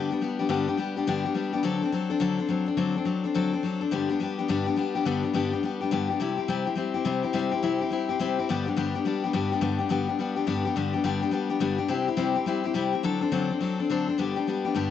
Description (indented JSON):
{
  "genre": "rock",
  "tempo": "210 BPM",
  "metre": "4/4",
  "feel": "swing 64% on 8ths",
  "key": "G major",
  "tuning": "A4 = 439 Hz",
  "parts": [
    { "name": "picked steel-string acoustic guitar", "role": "solo", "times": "0.0-14.9 s", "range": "G2 to A4", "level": "-24 LUFS", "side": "left 5 dB", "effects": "none" }
  ],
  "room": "moderate spring reverb, RT60 2.3 s",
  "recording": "nothing above 8.0 kHz",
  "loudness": "-24 LUFS",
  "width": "side -10 dB against mid",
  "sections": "0.0-5.1 A section; 5.1-14.2 B section",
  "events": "none",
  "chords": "0.0 G; 1.6 D7; 3.9 G; 6.2 C; 8.5 G; 11.9 C; 13.0 D7; 14.2 G"
}